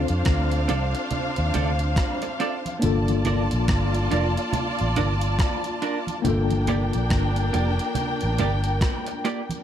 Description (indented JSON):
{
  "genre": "lovers rock reggae",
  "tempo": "70 BPM",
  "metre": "4/4",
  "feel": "swing 60% on 16ths",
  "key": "G minor",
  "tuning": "A4 = 441 Hz",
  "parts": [
    { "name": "warm studio string section", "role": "second line", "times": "0.0-9.6 s", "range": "D4 to A5", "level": "-28 LUFS", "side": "equal", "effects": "none" },
    { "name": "mellow tine electric piano", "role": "accompaniment", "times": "0.0-9.6 s", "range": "Bb3 to A4", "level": "-29 LUFS", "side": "left 6 dB", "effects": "medium stereo tremolo" },
    { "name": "vintage muted fingered electric bass", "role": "bass", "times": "0.0-8.8 s", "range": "F1 to F2", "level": "-24 LUFS", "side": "equal", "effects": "none" },
    { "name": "clean 12-bit digital drum machine", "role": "drums", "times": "0.1-9.6 s", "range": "hi-hat, kick drum, rim click", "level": "-27 LUFS", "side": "equal", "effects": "none" },
    { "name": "clean electric guitar", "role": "stabs", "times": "0.7-9.4 s", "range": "Bb3 to D5", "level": "-28 LUFS", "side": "right 5 dB", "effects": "tremolo" },
    { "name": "congas", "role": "percussion", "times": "0.7-9.6 s", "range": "none", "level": "-32 LUFS", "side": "right 4 dB", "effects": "none" }
  ],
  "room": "light reverb",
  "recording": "none",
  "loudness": "-21 LUFS",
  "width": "side -10 dB against mid",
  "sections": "0.0-9.6 A section",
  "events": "none",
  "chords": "0.0 Dm7; 2.8 Gm7"
}